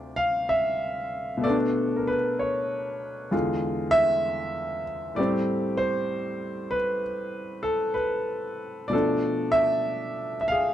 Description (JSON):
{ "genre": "solo jazz", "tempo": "64 BPM", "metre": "4/4", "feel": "swing 67% on 8ths, rubato", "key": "A minor", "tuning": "A4 = 439 Hz", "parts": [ { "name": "clear baby grand piano", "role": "solo", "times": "0.0-10.7 s", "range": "D2 to F5", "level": "-24 LUFS", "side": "equal", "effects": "none" } ], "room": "moderate studio reverb, RT60 0.5 s", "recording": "none", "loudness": "-24 LUFS", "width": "side -11 dB against mid", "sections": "0.0-10.7 A section", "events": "none", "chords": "0.0 Dm9; 1.4 Bm9; 3.3 E7b9; 5.2 Am9; 8.9 Bm7b5" }